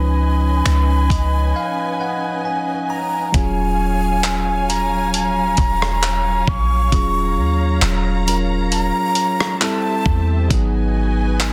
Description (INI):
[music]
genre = contemporary R&B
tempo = 67 BPM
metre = 4/4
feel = swing 54% on 16ths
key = Eb minor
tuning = A4 = 442 Hz
[part]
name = breathy mellow silver concert flute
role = melody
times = 0.0-10.3 s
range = Ab5 to Db6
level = -24 LUFS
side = equal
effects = none
[part]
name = bell-like tine electric piano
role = accompaniment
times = 0.0-11.5 s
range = F3 to Bb5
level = -26 LUFS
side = equal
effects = none
[part]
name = dark studio string section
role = sustained chords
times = 0.0-11.5 s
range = Gb3 to Bb5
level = -29 LUFS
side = equal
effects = sidechain pumping
[part]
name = warm 808-style bass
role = bass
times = 0.0-11.5 s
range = Eb1 to E2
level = -21 LUFS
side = equal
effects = none
[part]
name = dusty soul sampler-style drum kit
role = drums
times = 0.7-11.5 s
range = finger snaps, handclaps, hi-hat, kick drum, rim click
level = -22 LUFS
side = equal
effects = soft clipping on snare
[sound]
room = little or no reverb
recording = dense, heavily limited modern master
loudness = -18 LUFS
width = mono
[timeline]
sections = 0.0-3.3 A section; 3.3-11.5 B section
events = tine electric piano fill 0.7-3.3; break 1.6-3.3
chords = 0.0 Db9; 3.3 Ebm11; 9.6 Am7; 10.5 Abm7